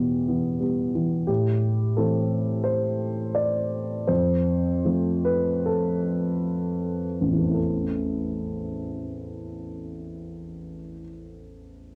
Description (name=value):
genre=neoclassical minimalist piano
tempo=60-88 BPM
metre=4/4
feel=rubato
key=A minor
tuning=A4 = 441 Hz
part: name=dark baby grand piano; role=solo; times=0.0-12.0 s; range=A1 to D5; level=-26 LUFS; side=equal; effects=cassette tape
room=moderate studio reverb, RT60 0.6 s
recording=home recording on cassette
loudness=-25 LUFS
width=mono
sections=0.0-1.3 A section; 1.3-7.6 B section; 7.6-11.5 C section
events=slowing down 0.0-7.6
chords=0.0 Em; 1.3 Am; 4.1 F; 7.6 Am